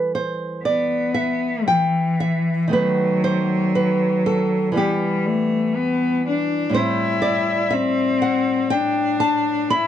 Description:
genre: romantic duo for cello and classical guitar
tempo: 56-63 BPM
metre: 4/4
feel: rubato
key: E minor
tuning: A4 = 445 Hz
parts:
  - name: nylon-string guitar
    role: accompaniment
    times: 0.0-9.9 s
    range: A2 to B5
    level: -21 LUFS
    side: right 2 dB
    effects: none
  - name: rich cello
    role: melody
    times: 0.6-9.9 s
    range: E3 to E4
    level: -20 LUFS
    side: left 3 dB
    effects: none
room: light reverb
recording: dark, warm production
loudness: -18 LUFS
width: side -10 dB against mid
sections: 0.0-9.9 A section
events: none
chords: 0.0 Em; 2.7 B7/D#; 4.8 Em; 6.7 Am7

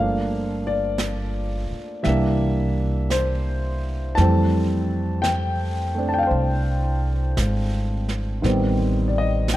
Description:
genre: jazz ballad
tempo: 57 BPM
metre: 4/4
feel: swing 68% on 8ths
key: F major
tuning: A4 = 438 Hz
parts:
  - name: warm concert grand piano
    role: accompaniment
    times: 0.0-9.6 s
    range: Eb3 to A5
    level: -23 LUFS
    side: equal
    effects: none
  - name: upright bass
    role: bass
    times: 0.0-9.6 s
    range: G1 to F2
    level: -23 LUFS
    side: equal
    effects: none
  - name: jazz brush drum kit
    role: drums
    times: 1.0-9.6 s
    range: brushed snare drum, hi-hat, snare drum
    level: -33 LUFS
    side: right 3 dB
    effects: none
room: little or no reverb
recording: dark, warm production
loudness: -20 LUFS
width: side -15 dB against mid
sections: 0.0-4.2 A section; 4.2-9.6 B section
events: none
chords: 0.0 Gm7; 2.1 C7; 4.2 Fmaj9; 8.4 Am7b5

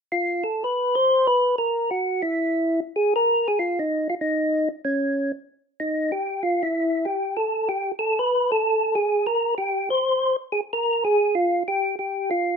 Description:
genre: jazz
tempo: 190 BPM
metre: 4/4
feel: swing 63% on 8ths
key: unclear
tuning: A4 = 440 Hz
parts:
  - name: percussive tonewheel organ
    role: solo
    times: 0.1-12.6 s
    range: Db4 to C5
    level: -20 LUFS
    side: equal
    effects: slow rotary speaker
room: moderate studio reverb, RT60 0.7 s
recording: minimal, uncompressed stereo recording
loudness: -21 LUFS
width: side -6 dB against mid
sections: 0.4-2.9 A section; 2.9-12.6 B section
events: none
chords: none

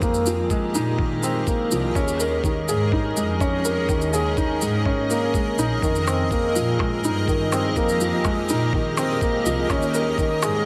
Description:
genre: piano and strings electronica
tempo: 124 BPM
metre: 4/4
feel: straight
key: F minor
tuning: A4 = 443 Hz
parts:
  - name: granular cloud pad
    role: sustained chords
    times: 0.0-10.7 s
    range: Db4 to Eb5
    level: -30 LUFS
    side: equal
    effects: built-in reverb, sidechain pumping
  - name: felt-muted upright piano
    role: riff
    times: 0.0-10.7 s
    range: Eb3 to Bb4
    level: -25 LUFS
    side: equal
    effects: tape echo
  - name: warm studio double bass section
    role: bass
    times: 0.0-10.7 s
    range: Bb1 to Bb2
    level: -30 LUFS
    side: equal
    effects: sidechain pumping
  - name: electronic kick drum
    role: drums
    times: 0.0-10.3 s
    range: none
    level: -28 LUFS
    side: equal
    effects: none
  - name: shaker and percussion blips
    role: drums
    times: 0.0-10.5 s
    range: none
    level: -32 LUFS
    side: equal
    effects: none
room: moderate recital hall reverb, RT60 1.4 s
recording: none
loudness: -22 LUFS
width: mono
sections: 0.0-10.7 A section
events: none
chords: 0.0 Fm11; 2.0 Eb7sus4; 5.8 Fm11; 9.7 Eb7sus4

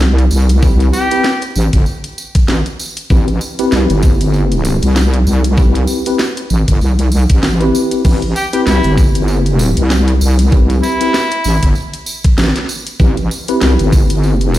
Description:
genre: glitch hop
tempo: 97 BPM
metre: 4/4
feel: swing 57% on 16ths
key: A minor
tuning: A4 = 437 Hz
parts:
  - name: mellow tine electric piano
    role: stabs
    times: 0.0-14.6 s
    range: C4 to B4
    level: -18 LUFS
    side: left 1 dB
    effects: medium stereo tremolo, vintage 12-bit sampler grit, sidechain pumping, tape echo
  - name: wobble bass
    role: bass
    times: 0.0-14.6 s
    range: G1 to C2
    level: -12 LUFS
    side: equal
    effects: chorus, overdrive
  - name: drum and bass drum kit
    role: drums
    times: 0.0-14.5 s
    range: crash cymbal, hi-hat, rim click, snare drum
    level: -19 LUFS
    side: equal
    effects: none
  - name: tambourine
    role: percussion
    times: 0.0-14.6 s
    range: none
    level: -27 LUFS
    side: right 2 dB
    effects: none
  - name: electronic kick drum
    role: drums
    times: 0.6-14.1 s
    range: none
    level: -11 LUFS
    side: equal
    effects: none
  - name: clear trumpet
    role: melody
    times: 0.9-1.4, 8.4-11.7 s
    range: E4 to G4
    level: -19 LUFS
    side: equal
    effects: tape echo
room: light reverb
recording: played on a big sound system in a bare room, stone room reverb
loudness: -10 LUFS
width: side -14 dB against mid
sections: 0.0-14.6 A section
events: none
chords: 0.0 Am9

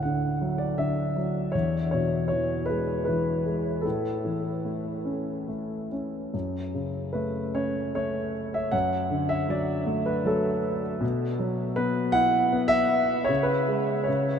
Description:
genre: classical, lyrical solo piano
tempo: 68-82 BPM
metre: 3/4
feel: rubato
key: A major, F# minor from 6.3 s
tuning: A4 = 439 Hz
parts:
  - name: warm concert grand piano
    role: solo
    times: 0.0-14.4 s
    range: D2 to F#5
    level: -24 LUFS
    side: equal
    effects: none
room: wet huge ambient reverb, RT60 8.3 s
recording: in a vast, echoing space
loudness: -24 LUFS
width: side -7 dB against mid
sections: 0.0-6.3 A section; 6.3-14.4 B section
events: none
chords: 0.0 D; 1.5 E; 3.9 A; 6.3 F#m; 8.7 D/F#; 11.0 Bsus4; 13.3 C#5

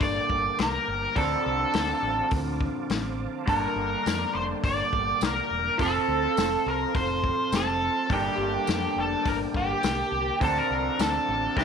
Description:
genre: psychedelic rock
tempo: 104 BPM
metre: 4/4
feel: straight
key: G minor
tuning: A4 = 441 Hz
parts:
  - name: octave-fuzz lead guitar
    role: melody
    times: 0.0-11.6 s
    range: G4 to D5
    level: -27 LUFS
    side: equal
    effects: wah, distortion, slapback echo
  - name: tonewheel organ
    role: sustained chords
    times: 0.0-11.6 s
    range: Bb3 to D6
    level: -39 LUFS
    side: right 12 dB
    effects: slow rotary speaker, overdrive, chorus vibrato
  - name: electric guitar through a small old amp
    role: riff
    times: 0.0-11.6 s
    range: G2 to A4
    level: -29 LUFS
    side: right 1 dB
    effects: flanger
  - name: fingered electric bass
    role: bass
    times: 0.0-11.6 s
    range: E1 to F2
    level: -33 LUFS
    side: equal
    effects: none
  - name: vintage drum kit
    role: drums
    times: 0.0-11.6 s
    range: hi-hat, kick drum, snare drum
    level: -30 LUFS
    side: left 3 dB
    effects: none
  - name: tambourine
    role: percussion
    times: 4.1-11.1 s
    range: none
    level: -41 LUFS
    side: right 15 dB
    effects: none
room: light reverb, studio reverb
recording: 1960s-style stereo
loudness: -24 LUFS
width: side -6 dB against mid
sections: 0.0-11.6 A section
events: none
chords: 0.0 Gmadd9; 1.2 Dm7; 3.5 Gmadd9; 5.8 F; 8.1 Gmadd9; 10.4 Dm7

